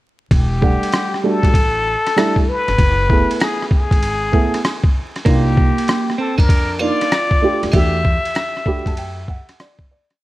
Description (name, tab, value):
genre	hip hop, jazz-hop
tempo	97 BPM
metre	4/4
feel	swing 65% on 16ths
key	unclear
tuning	A4 = 440 Hz
part	trumpet with plunger mute	melody	0.3-9.6 s	G4 to E5	-20 LUFS	left 2 dB	none
part	upright bass	bass	0.3-9.4 s	E1 to F#2	-21 LUFS	equal	none
part	boom bap sampler-style drum kit	drums	0.3-10.2 s	hi-hat, kick drum, ride cymbal, rim click	-17 LUFS	equal	none
part	dark upright piano	accompaniment	0.6-10.2 s	G3 to B5	-20 LUFS	right 3 dB	none
part	clean electric guitar	second line	5.2-9.6 s	Bb3 to G4	-23 LUFS	right 3 dB	none
room	small room ambience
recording	vinyl crackle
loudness	-14 LUFS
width	side -17 dB against mid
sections	0.3-10.2 A section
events	fade-out 7.7-10.2; upright piano fill 8.4-10.2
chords	0.3 Em11; 2.8 F#m11; 5.3 Cm11; 7.7 Em11